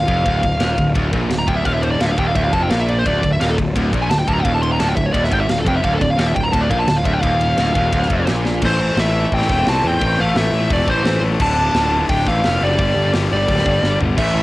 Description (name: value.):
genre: heavy metal.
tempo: 172 BPM.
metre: 4/4.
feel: straight.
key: D minor.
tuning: A4 = 440 Hz.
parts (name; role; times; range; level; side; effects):
smooth overdriven lead guitar; melody; 0.0-14.4 s; A4 to C6; -20 LUFS; equal; none.
distorted electric guitar; riff; 0.0-8.6, 14.2-14.4 s; D2 to A3; -24 LUFS; right 5 dB; overdrive, cassette tape.
heavy high-gain guitar; riff; 0.0-14.4 s; D2 to A3; -24 LUFS; left 5 dB; distortion, cassette tape.
fuzz picked electric bass; bass; 0.0-14.4 s; D1 to E2; -19 LUFS; equal; overdrive.
tight metal drum kit; drums; 0.1-14.3 s; crash cymbal, hi-hat, kick drum, ride cymbal, snare drum, toms; -23 LUFS; equal; cassette tape.
high-gain lead guitar; second line; 8.7-14.4 s; E3 to D4; -28 LUFS; right 2 dB; distortion, cassette tape.
room: small room ambience.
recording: home recording on cassette.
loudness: -14 LUFS.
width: side -18 dB against mid.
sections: 0.0-8.6 A section; 8.6-14.4 B section.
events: lead electric guitar solo 0.0-8.6; drum fill 8.4, 13.8-14.2.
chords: 0.0 Dm; 8.6 Am; 11.4 Dm; 12.8 G5.